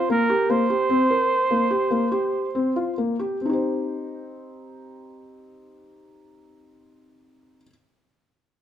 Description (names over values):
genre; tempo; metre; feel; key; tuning
contemporary instrumental, contemporary; 134-151 BPM; 7/4; straight; C minor; A4 = 439 Hz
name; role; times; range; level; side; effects
clear flugelhorn; melody; 0.0-3.0 s; Bb4 to C5; -22 LUFS; right 3 dB; none
felt-muted upright piano; arpeggios; 0.0-7.7 s; Bb3 to C5; -23 LUFS; left 2 dB; none
room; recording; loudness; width
moderate recital hall reverb, RT60 1.6 s; close, detailed microphones; -20 LUFS; side -10 dB against mid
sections
0.0-3.4 A section; 3.4-6.6 B section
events
slowing down 0.1-3.4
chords
0.0 C7(no3); 3.4 Cm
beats
0.09 | 0.49 0.89 1.29 1.70 2.12 2.54 2.98 | 3.42 3.87 4.32 4.77 5.22 5.67 6.12